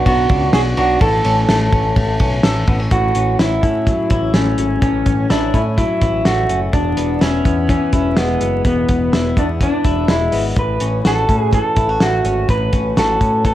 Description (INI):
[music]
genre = jangly indie pop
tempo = 126 BPM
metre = 4/4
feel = straight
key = A major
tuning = A4 = 440 Hz
[part]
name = electric guitar through a small old amp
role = melody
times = 0.0-13.5 s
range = B3 to B4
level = -18 LUFS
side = equal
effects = tape echo
[part]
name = direct-recorded clean electric guitar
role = arpeggios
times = 0.0-13.5 s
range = E2 to A4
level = -22 LUFS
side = left 2 dB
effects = lush chorus
[part]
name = picked electric bass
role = bass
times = 0.1-13.5 s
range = E1 to A2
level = -20 LUFS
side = equal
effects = none
[part]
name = cloth-damped thuddy drum kit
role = drums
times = 0.1-13.5 s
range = hi-hat, kick drum, ride cymbal, snare drum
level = -18 LUFS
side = equal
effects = none
[sound]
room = light reverb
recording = vinyl crackle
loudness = -13 LUFS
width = side -13 dB against mid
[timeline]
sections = 0.0-2.9 A section; 2.9-13.5 B section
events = none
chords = 0.0 Bm; 1.0 A; 2.9 A6; 6.7 E; 10.6 A6